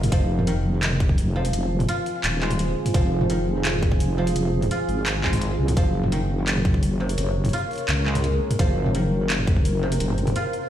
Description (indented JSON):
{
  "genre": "half-time drum and bass",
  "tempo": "170 BPM",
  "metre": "4/4",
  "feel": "half-time",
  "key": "F phrygian",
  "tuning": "A4 = 440 Hz",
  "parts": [
    { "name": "deep dark ambient pad", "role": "sustained chords", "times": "0.0-10.7 s", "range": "F4 to Db5", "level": "-30 LUFS", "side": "right 1 dB", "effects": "chorus, built-in reverb, sidechain pumping" },
    { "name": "deep soft wobble bass", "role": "bass", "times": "0.0-10.3 s", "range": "Eb1 to Db2", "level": "-23 LUFS", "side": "equal", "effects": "chorus" },
    { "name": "drum and bass drum kit", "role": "drums", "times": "0.0-10.6 s", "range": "handclaps, hi-hat, toms", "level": "-26 LUFS", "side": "equal", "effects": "none" },
    { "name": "koto", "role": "arpeggios", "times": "0.1-10.7 s", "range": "C3 to F4", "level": "-29 LUFS", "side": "equal", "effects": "vintage 12-bit sampler grit, tape echo" },
    { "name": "electronic kick drum", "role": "drums", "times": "0.1-9.6 s", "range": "none", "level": "-20 LUFS", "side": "equal", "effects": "none" }
  ],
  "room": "light reverb, digital ambience",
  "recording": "played on a big sound system in a bare room, stone room reverb",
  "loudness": "-20 LUFS",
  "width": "side -11 dB against mid",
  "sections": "0.0-10.7 A section",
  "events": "none",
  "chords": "0.1 Fm; 5.8 Gb"
}